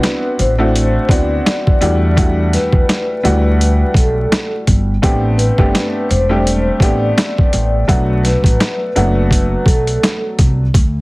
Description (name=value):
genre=hip hop, boom-bap hip-hop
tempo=84 BPM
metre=4/4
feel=swing 57% on 16ths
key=unclear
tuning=A4 = 440 Hz
part: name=vibraphone with soft mallets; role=melody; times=0.0-10.2 s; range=A4 to D5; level=-20 LUFS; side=left 1 dB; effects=slapback echo
part: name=dark upright piano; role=accompaniment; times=0.0-10.6 s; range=F#3 to G4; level=-18 LUFS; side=equal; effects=none
part: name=boom bap sampler-style drum kit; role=drums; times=0.0-10.9 s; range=hi-hat, kick drum, snare drum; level=-14 LUFS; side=equal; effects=overdrive
part: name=upright bass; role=bass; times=0.4-11.0 s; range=E1 to E2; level=-16 LUFS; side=equal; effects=none
room=light reverb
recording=heavily compressed radio sound, multiband compression, vinyl crackle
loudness=-12 LUFS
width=side -22 dB against mid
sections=0.0-11.0 A section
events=none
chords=0.0 D13; 1.8 Em11; 5.0 Am11; 7.9 Bm7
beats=0.03 0.74 1.46 | 2.17 2.88 3.60 4.31 | 5.03 5.74 6.46 7.17 | 7.88 8.60 9.31 10.03 | 10.74